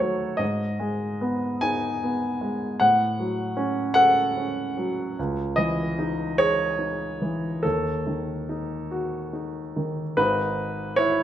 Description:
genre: neoclassical minimalist piano.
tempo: 47-52 BPM (dotted quarters).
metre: 6/8.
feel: rubato.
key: unclear.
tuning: A4 = 440 Hz.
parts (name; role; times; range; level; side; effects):
warm grand piano; solo; 0.0-11.2 s; G#1 to G#5; -22 LUFS; equal; none.
room: moderate large studio reverb, RT60 1.4 s.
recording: band playing live in one room.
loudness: -23 LUFS.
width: side -11 dB against mid.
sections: 0.0-10.2 A section; 10.2-11.2 B section.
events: none.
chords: 0.4 G#m; 2.8 F#m/A; 5.2 C#madd9; 7.6 D#dim; 10.2 G#m.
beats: | 0.41 1.64 | 2.82 3.98 | 5.17 6.39 | 7.64 8.92 | 10.19.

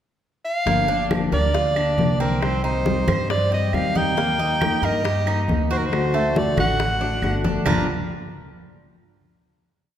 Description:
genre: latin, Cuban son and guajira.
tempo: 138 BPM.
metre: 4/4.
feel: straight.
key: G minor.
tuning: A4 = 440 Hz.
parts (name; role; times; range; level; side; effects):
breathy soprano saxophone; melody; 0.4-7.9 s; Bb4 to Bb5; -24 LUFS; right 1 dB; none.
fingerpicked steel-string acoustic guitar; accompaniment; 0.7-7.8 s; G2 to G4; -26 LUFS; left 3 dB; none.
Cuban tres; arpeggios; 0.7-7.9 s; G3 to C5; -28 LUFS; right 3 dB; none.
upright bass; bass; 0.7-7.9 s; G1 to G2; -25 LUFS; equal; none.
bongos; percussion; 0.7-7.8 s; none; -33 LUFS; left 4 dB; none.
congas; percussion; 0.7-7.8 s; none; -28 LUFS; equal; none.
claves; percussion; 1.1-7.8 s; none; -34 LUFS; right 5 dB; none.
room: wet scoring stage reverb, RT60 2.0 s.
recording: recorded in a church or concert hall.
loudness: -18 LUFS.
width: side -10 dB against mid.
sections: 0.0-0.7 pickup bar; 0.7-7.7 verse; 7.7-9.4 final chord.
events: drum fill 7.4.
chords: 0.0 N.C.; 0.7 Gm7; 2.4 Cm; 4.2 Eb; 5.9 D; 7.7 G7(no3).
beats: 0.23 | 0.67 1.11 1.55 1.99 | 2.42 2.86 3.30 3.74 | 4.18 4.61 5.05 5.49 | 5.92 6.36 6.79 7.22 | 7.66.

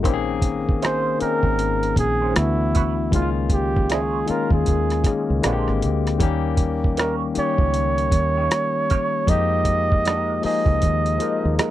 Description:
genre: R&B, neo-soul.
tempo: 78 BPM.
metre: 4/4.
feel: swing 62% on 16ths.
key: Bb dorian.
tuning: A4 = 440 Hz.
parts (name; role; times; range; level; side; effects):
barky tine electric piano; accompaniment; 0.0-11.7 s; D3 to Bb4; -24 LUFS; left 6 dB; overdrive, auto-pan.
deep dub fingered electric bass; bass; 0.0-11.6 s; Ab1 to F2; -24 LUFS; right 1 dB; none.
dusty soul sampler-style drum kit; drums; 0.0-11.7 s; hi-hat, kick drum, rim click; -21 LUFS; right 1 dB; none.
mellow flugelhorn; melody; 0.8-11.7 s; E4 to Eb5; -23 LUFS; right 3 dB; slapback echo.
electric guitar through a small old amp; second line; 0.8-11.7 s; Ab3 to Db5; -28 LUFS; right 12 dB; wah, tremolo.
room: little or no reverb.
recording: dry, close 1970s-style studio recording.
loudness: -18 LUFS.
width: side -13 dB against mid.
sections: 0.0-11.7 A section.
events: none.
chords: 0.0 Bbm11; 2.4 D69; 3.1 Db69; 5.4 Bb13; 6.2 Eb7; 9.3 Fm11.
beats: | 0.05 0.82 1.58 2.35 | 3.12 3.89 4.66 5.43 | 6.20 6.97 7.74 8.51 | 9.28 10.05 10.82 11.59.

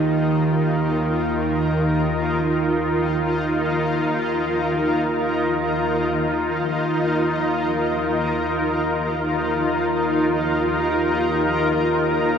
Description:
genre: dark ambient drone.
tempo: free time.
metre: none.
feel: none.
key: unclear.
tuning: A4 = 440 Hz.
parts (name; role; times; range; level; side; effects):
granular cloud pad; sustained chords; 0.0-12.4 s; Eb4 to Bb4; -20 LUFS; equal; built-in reverb, shimmer reverb.
bowed-like drone; drone; 0.0-12.4 s; Eb2 to Eb3; -24 LUFS; right 1 dB; built-in reverb.
bronze singing bowl; texture; 0.0-12.4 s; none; barely audible; none; none.
room: wet huge ambient reverb, RT60 9.0 s.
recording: none.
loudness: -19 LUFS.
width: side -7 dB against mid.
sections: 0.0-8.4 A section; 8.4-12.4 B section.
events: none.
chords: 0.0 Ebsus2.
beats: free time.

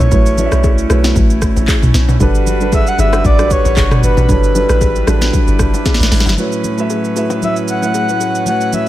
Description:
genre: amapiano.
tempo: 115 BPM.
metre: 4/4.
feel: swing 55% on 16ths.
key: A mixolydian.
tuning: A4 = 440 Hz.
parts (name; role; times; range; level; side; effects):
breathy flute-like synth lead; melody; 0.0-8.9 s; B4 to F#5; -17 LUFS; equal; chorus, tremolo, tape echo.
dark concert grand piano; accompaniment; 0.0-8.9 s; G3 to E5; -19 LUFS; right 2 dB; none.
pipe organ, foundations; sustained chords; 0.0-8.9 s; A2 to B4; -21 LUFS; equal; none.
deep log drum bass; bass; 0.0-6.4 s; G1 to B1; -14 LUFS; equal; none.
afro-pop drum kit; drums; 0.0-8.9 s; handclaps, hi-hat, kick drum, rim click, shaker, snare drum, toms; -15 LUFS; equal; none.
bongos and congas; percussion; 0.0-8.9 s; none; -24 LUFS; left 6 dB; none.
room: little or no reverb.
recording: none.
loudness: -11 LUFS.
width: side -14 dB against mid.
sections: 0.0-6.4 A section; 6.4-8.9 B section.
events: drop 0.0-6.4; drum fill 5.9-6.4.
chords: 0.0 A69; 2.2 Gmaj7; 6.4 A69.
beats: | 0.12 0.64 1.16 1.68 | 2.20 2.73 3.25 3.77 | 4.29 4.81 5.33 5.86 | 6.38 6.90 7.42 7.94 | 8.46.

